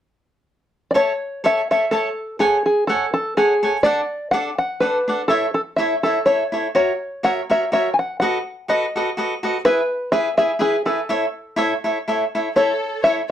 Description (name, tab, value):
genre	mexican folk, mariachi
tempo	124 BPM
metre	3/4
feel	swing 54% on 8ths, rubato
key	A major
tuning	A4 = 440 Hz
part	open-back banjo	melody	0.9-13.1 s	G#4 to G#5	-18 LUFS	left 1 dB	none
part	cavaquinho	accompaniment	0.9-13.2 s	D4 to A5	-21 LUFS	right 1 dB	none
part	dark studio violin section	second line	12.6-13.2 s	A4 to C#5	-26 LUFS	right 2 dB	none
room	moderate studio reverb, RT60 0.5 s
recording	none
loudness	-17 LUFS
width	side -10 dB against mid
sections	1.0-12.6 A section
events	none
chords	0.0 N.C.; 1.0 A; 2.4 F#madd9; 3.9 D; 5.3 A; 6.8 F#7; 8.2 B7; 9.6 E; 11.1 A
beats	0.47 | 0.96 1.45 1.93 | 2.41 2.90 3.38 | 3.85 4.33 4.82 | 5.30 5.78 6.27 | 6.76 7.25 7.73 | 8.22 8.70 9.17 | 9.65 10.12 10.60 | 11.08 11.57 12.06 | 12.56 13.04